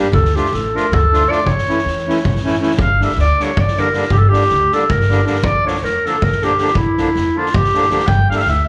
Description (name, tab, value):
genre	balkan folk, Balkan wedding band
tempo	317 BPM (eighths)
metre	7/8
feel	straight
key	unclear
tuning	A4 = 440 Hz
part	accordion	accompaniment	0.0-8.4 s	D3 to F4	-23 LUFS	equal	slapback echo
part	clear clarinet	melody	0.1-8.7 s	E4 to G5	-19 LUFS	equal	slapback echo
part	upright bass	bass	0.1-8.6 s	G1 to F2	-21 LUFS	equal	none
part	street-band drum kit	percussion	0.1-8.5 s	kick drum, snare drum	-22 LUFS	equal	none
room	light reverb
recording	live gig heard through the venue's PA, club reverb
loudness	-15 LUFS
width	mono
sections	0.0-2.8 A section; 2.8-8.7 B section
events	none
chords	0.1 Dm; 1.4 A; 2.8 Gm; 5.4 Bb; 8.1 Gm